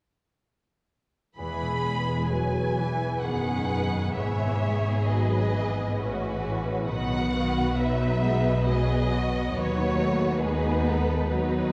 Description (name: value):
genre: classical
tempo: 66 BPM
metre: 3/4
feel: uneven beats, rubato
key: E major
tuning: A4 = 440 Hz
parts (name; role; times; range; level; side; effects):
- warm symphonic violin section; melody; 1.4-11.7 s; B4 to B5; -35 LUFS; equal; none
- warm symphonic violin section; second line; 1.4-11.7 s; D#4 to C#5; -35 LUFS; equal; none
- warm symphonic viola section; accompaniment; 1.4-11.7 s; D#3 to C#4; -33 LUFS; equal; none
- concert harp; arpeggios; 1.4-11.7 s; E2 to G#5; -34 LUFS; equal; none
- dark symphonic cello section; bass; 1.4-11.7 s; D#2 to B2; -33 LUFS; equal; none
- dark symphonic double bass section; bass; 1.4-11.7 s; E1 to D#2; -33 LUFS; equal; none
room: wet scoring stage reverb, RT60 1.8 s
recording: heard from further back in the room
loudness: -26 LUFS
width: mono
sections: 1.4-11.7 A section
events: none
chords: 1.4 E; 4.2 E/G#; 6.9 B; 9.6 B/D#